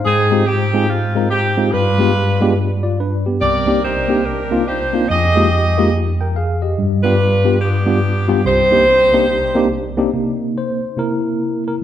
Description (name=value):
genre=gospel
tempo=143 BPM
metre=4/4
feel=swing 62% on 8ths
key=C minor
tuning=A4 = 439 Hz
part: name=tine electric piano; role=accompaniment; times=0.0-11.8 s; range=C2 to G5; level=-16 LUFS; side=left 1 dB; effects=medium stereo tremolo
part: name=bright saxophone section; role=melody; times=0.1-9.7 s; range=B3 to Eb5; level=-16 LUFS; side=right 1 dB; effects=none
room=wet recital hall reverb, RT60 1.4 s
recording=dark, warm production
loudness=-14 LUFS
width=side -10 dB against mid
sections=0.0-10.1 A section; 10.1-11.8 B section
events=tine electric piano solo 10.1-11.8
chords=0.1 Fm9/Ab; 1.7 G7b9; 3.4 Cm9; 5.1 Fm11; 6.8 G7; 8.4 Cm9; 10.1 Cm7; 11.0 C7